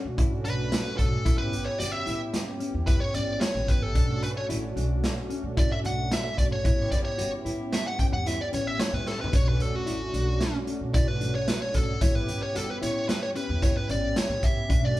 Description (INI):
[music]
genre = progressive instrumental, band music in an uneven meter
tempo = 112 BPM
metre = 5/4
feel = straight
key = unclear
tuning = A4 = 440 Hz
[part]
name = brassy analog pad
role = accompaniment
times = 0.0-15.0 s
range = A3 to G4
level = -36 LUFS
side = right 2 dB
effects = chorus
[part]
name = mellow electric guitar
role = arpeggios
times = 0.0-15.0 s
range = C#4 to F#4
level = -36 LUFS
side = left 3 dB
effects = none
[part]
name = upright bass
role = bass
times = 0.0-14.9 s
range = G1 to B2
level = -31 LUFS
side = equal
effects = none
[part]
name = raw garage drum kit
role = drums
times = 0.2-15.0 s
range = hi-hat, kick drum, snare drum, toms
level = -26 LUFS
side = equal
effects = none
[part]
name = fuzz lead guitar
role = melody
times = 0.5-15.0 s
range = F#4 to G5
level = -30 LUFS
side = equal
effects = distortion
[sound]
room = moderate large studio reverb, RT60 1.2 s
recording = band playing live in one room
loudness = -24 LUFS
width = side -16 dB against mid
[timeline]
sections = 0.0-15.0 A section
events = lead electric guitar solo 0.0-15.0; drum fill 9.1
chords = 0.0 Bm9; 1.3 A7; 4.0 Bm9; 6.6 A7; 9.3 Bm9; 12.0 A7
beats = 0.18 0.72 | 1.26 1.80 2.34 2.88 3.42 | 3.96 4.50 5.03 5.57 6.11 | 6.65 7.18 7.72 8.26 8.80 | 9.33 9.87 10.41 10.94 11.48 | 12.02 12.55 13.09 13.63 14.16 | 14.70